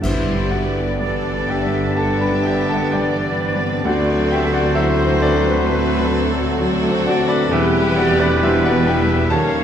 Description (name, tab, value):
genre	classical, romantic movement for piano and orchestra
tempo	60-67 BPM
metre	4/4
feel	rubato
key	G major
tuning	A4 = 440 Hz
part	warm baby grand piano	melody	0.0-9.6 s	D2 to B5	-21 LUFS	left 1 dB	none
part	warm studio violin section	melody	0.0-9.6 s	F#4 to E5	-30 LUFS	left 2 dB	none
part	bright flute section	second line	0.0-9.6 s	B4 to G5	-27 LUFS	left 1 dB	none
part	warm clarinet	second line	0.0-9.6 s	D4 to F#4	-28 LUFS	left 1 dB	none
part	warm studio violin section	second line	0.0-9.6 s	B3 to A4	-27 LUFS	left 3 dB	none
part	dark bassoon	accompaniment	0.0-9.6 s	G3 to B3	-28 LUFS	right 2 dB	none
part	rich symphonic viola section	accompaniment	0.0-9.6 s	D3 to D4	-26 LUFS	right 1 dB	none
part	bright trombone section	sustained chords	0.0-9.6 s	Bb2 to A3	-29 LUFS	right 3 dB	none
part	dark French horn section	sustained chords	0.0-9.6 s	B3 to F#4	-26 LUFS	left 6 dB	none
part	rich studio double bass section	bass	0.0-9.6 s	E1 to Eb2	-25 LUFS	right 4 dB	none
part	warm studio cello section	bass	0.0-9.6 s	D2 to G2	-26 LUFS	right 2 dB	none
part	clash cymbals and concert bass drum	percussion	0.0-1.9 s	none	-28 LUFS	equal	none
part	timpani	percussion	0.0-1.5 s	G2	-30 LUFS	right 2 dB	none
part	clear oboe	second line	0.1-9.6 s	B4 to D5	-28 LUFS	right 1 dB	none
room	wet recital hall reverb, RT60 1.6 s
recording	none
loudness	-15 LUFS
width	side -9 dB against mid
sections	0.0-9.6 A section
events	band accent 0.0-1.0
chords	0.0 G; 3.9 D7; 7.5 Em